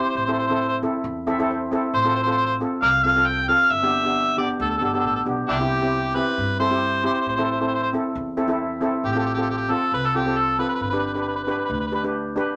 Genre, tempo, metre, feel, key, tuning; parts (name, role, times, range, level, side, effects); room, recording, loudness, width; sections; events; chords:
calypso; 135 BPM; 4/4; straight; A4 = 441 Hz
overdriven harmonica; melody; 0.0-12.0 s; D4 to G5; -24 LUFS; equal
steel pan; accompaniment; 0.0-12.6 s; B3 to E5; -26 LUFS; equal
upright bass; bass; 0.2-12.4 s; G1 to G2; -34 LUFS; equal
moderate small room ambience, RT60 0.5 s; -22 LUFS; mono
0.0-12.6 A section
steel pan fill 1.0-1.9
0.2 Am; 1.9 F/A; 3.7 Gadd9; 5.5 Cmaj7; 7.3 Am; 9.0 F/A; 10.8 G